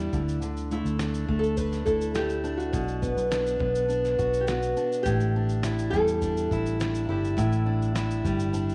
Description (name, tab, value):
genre	acoustic pop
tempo	104 BPM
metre	4/4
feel	straight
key	unclear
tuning	A4 = 439 Hz
part	fingerpicked steel-string acoustic guitar	accompaniment	0.0-8.7 s	A2 to F#4	-29 LUFS	equal	none
part	vintage muted fingered electric bass	bass	0.0-8.7 s	G1 to E2	-33 LUFS	equal	none
part	dusty soul sampler-style drum kit	drums	0.1-8.7 s	kick drum, shaker, snare drum	-38 LUFS	equal	none
part	nylon-string guitar	melody	0.7-8.7 s	E4 to B4	-32 LUFS	equal	none
room	moderate echo chamber reverb, RT60 2.1 s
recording	none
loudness	-26 LUFS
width	mono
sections	0.0-5.1 A section; 5.1-8.7 B section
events	none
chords	0.1 Dsus2; 2.7 Bm; 5.1 A7sus4